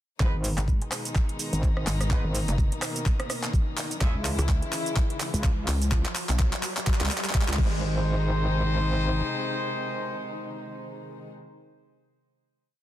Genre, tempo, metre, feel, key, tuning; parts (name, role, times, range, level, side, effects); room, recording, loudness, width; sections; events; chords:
bass house; 126 BPM; 4/4; swing 57% on 16ths; A4 = 441 Hz
dark chamber string section; sustained chords; 0.2-11.3 s; B2 to E4; -34 LUFS; left 2 dB; sidechain pumping
warm horn section; stabs; 0.2-4.1, 7.6-11.3 s; G#3 to E5; -33 LUFS; left 1 dB; sidechain pumping, ping-pong delay
metallic wobble bass; bass; 0.2-9.2 s; G#1 to C#2; -26 LUFS; equal; distortion, chorus, tube saturation, sidechain pumping
electronic kick drum; drums; 0.2-7.7 s; -24 LUFS; equal
garage drum kit; drums; 0.2-7.7 s; crash cymbal, handclaps, hi-hat, rim click, shaker; -31 LUFS; equal
riser; sound effects; 2.8-7.8 s; -38 LUFS; right 1 dB
pulsing pluck wobble bass; bass; 0.6-7.6 s; F#1 to C#2; -26 LUFS; equal; chorus, tube saturation, sidechain pumping
little or no reverb; dense, heavily limited modern master; -24 LUFS; side -13 dB against mid
0.2-7.8 build; 7.8-11.6 final hit
build-up 0.2-7.8; drum fill 0.2-7.8; riser 2.8-7.8
0.2 G#m; 4.0 C#m; 7.6 G#